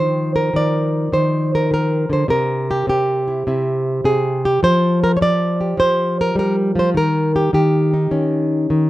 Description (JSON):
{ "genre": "solo jazz", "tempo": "103 BPM", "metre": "4/4", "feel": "swing 68% on 8ths", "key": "Eb major", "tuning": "A4 = 442 Hz", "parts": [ { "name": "flamenco guitar", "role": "solo", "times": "0.0-8.9 s", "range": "C3 to D5", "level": "-15 LUFS", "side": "equal", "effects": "none" } ], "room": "light reverb", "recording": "none", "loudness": "-15 LUFS", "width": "side -16 dB against mid", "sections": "0.0-8.9 A section", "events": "none", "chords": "0.0 Ebsus2; 2.3 C7; 4.6 Fsus2; 6.9 Eb7", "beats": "0.53 1.11 1.70 | 2.28 2.86 3.44 4.03 | 4.61 5.19 5.77 6.36 | 6.94 7.52 8.10 8.68" }